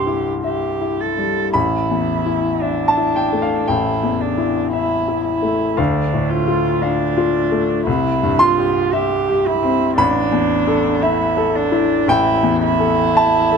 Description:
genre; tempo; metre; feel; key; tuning
neoclassical piano and strings; 57 BPM; 4/4; rubato; A minor; A4 = 440 Hz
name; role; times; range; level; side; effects
dark cello; second line; 0.0-13.6 s; D4 to A4; -19 LUFS; right 7 dB; none
warm grand piano; accompaniment; 0.0-13.6 s; A1 to C6; -17 LUFS; left 3 dB; none
room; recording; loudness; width
little or no reverb; close, detailed microphones; -15 LUFS; side -6 dB against mid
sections
0.0-13.6 A section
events
none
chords
0.0 C; 1.5 Asus2; 5.8 Dm; 7.9 C; 10.0 Asus2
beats
0.45 | 1.54 2.62 3.69 4.74 | 5.79 6.83 7.87 8.93 | 9.99 11.04 12.10 13.17

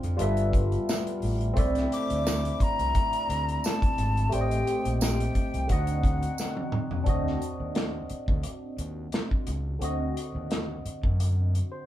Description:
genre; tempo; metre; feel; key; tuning
lush 1970s-style soul; 87 BPM; 4/4; swing 54% on 16ths; unclear; A4 = 440 Hz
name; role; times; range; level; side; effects
barky tine electric piano; accompaniment; 0.0-11.9 s; D3 to F5; -32 LUFS; left 1 dB; phaser
percussive tonewheel organ; sustained chords; 0.0-7.1 s; C3 to G4; -36 LUFS; equal; overdrive
overdriven fingered electric bass; bass; 0.0-11.6 s; G1 to F#2; -29 LUFS; equal; none
modern studio drum kit; drums; 0.0-11.7 s; hi-hat, kick drum, snare drum, toms; -28 LUFS; equal; none
tambourine; percussion; 0.9-6.6 s; none; -37 LUFS; right 5 dB; none
breathy hollow jazz flute; melody; 1.9-6.7 s; F#5 to D6; -31 LUFS; left 2 dB; none
room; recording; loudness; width
wet small room reverb, RT60 0.5 s; band playing live in one room; -25 LUFS; side -13 dB against mid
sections
0.0-7.1 A section; 7.1-11.9 B section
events
drum fill 6.4-7.1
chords
0.2 G13; 1.6 C69; 4.3 Am7b5; 5.7 D7b9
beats
0.20 0.88 | 1.57 2.26 2.94 3.63 | 4.32 5.00 5.69 6.38 | 7.07 7.75 8.44 9.13 | 9.82 10.51 11.19

